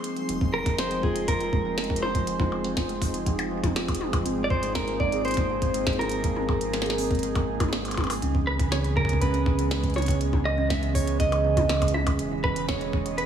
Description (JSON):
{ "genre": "IDM", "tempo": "121 BPM", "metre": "4/4", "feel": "straight", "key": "unclear", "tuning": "A4 = 439 Hz", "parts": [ { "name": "warbly tape-like pad", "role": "sustained chords", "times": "0.0-13.3 s", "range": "Fb3 to D#5", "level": "-32 LUFS", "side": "right 1 dB", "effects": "chorus, built-in reverb" }, { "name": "glitchy drum kit", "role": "drums", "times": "0.0-13.3 s", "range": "hi-hat, percussion blips, snare drum, toms", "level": "-32 LUFS", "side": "left 1 dB", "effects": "studio reverb" }, { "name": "kalimba", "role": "arpeggios", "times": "0.2-13.2 s", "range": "Db3 to Ab4", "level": "-31 LUFS", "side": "right 2 dB", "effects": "digital delay" }, { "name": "warm sub bass", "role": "bass", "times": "0.3-13.3 s", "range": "E1 to Db2", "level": "-30 LUFS", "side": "equal", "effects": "none" }, { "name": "electronic kick drum", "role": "drums", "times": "0.4-13.0 s", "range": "none", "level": "-29 LUFS", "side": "equal", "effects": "overdrive, studio reverb" }, { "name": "clean electric guitar", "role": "melody", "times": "0.5-13.3 s", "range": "Ab4 to Fb5", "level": "-28 LUFS", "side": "right 1 dB", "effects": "spring reverb, digital delay" } ], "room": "light reverb, digital ambience", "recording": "none", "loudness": "-23 LUFS", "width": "side -9 dB against mid", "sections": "0.3-13.3 A section", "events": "none", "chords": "0.3 Fm7; 4.3 Ab69; 8.2 Dbm7; 12.2 Emaj7" }